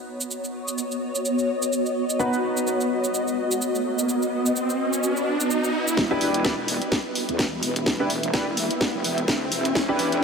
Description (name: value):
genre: bass house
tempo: 127 BPM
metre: 4/4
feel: swing 57% on 16ths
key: unclear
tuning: A4 = 440 Hz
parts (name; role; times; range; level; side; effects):
- warm grand piano; stabs; 0.0-10.2 s; B3 to B4; -28 LUFS; equal; analog chorus, sidechain pumping, low-pass filter, diffuse ambient delay
- granular cloud pad; texture; 0.1-10.2 s; B3 to G5; -25 LUFS; equal; built-in reverb, ensemble chorus, sidechain pumping
- garage drum kit; drums; 0.2-10.2 s; cabasa, hi-hat, snare drum; -27 LUFS; equal; studio reverb
- riser; sound effects; 3.3-10.2 s; none; -30 LUFS; right 1 dB; none
- wobble bass; bass; 6.0-10.2 s; E1 to E2; -31 LUFS; equal; chorus, sidechain pumping, high-pass filter
- electronic kick drum; drums; 6.0-9.9 s; none; -27 LUFS; equal; high-pass filter on kick, studio reverb
room: wet huge ambient reverb, RT60 3.7 s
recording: dreamy mix soaked in reverb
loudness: -22 LUFS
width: side -5 dB against mid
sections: 0.0-6.0 A section; 6.0-10.2 B section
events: filter sweep on grand piano 0.0-6.0; riser 3.3-6.0, 6.0-10.2; build-up 6.0-10.2; drum fill 6.0-10.2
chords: 0.0 B; 6.0 Em7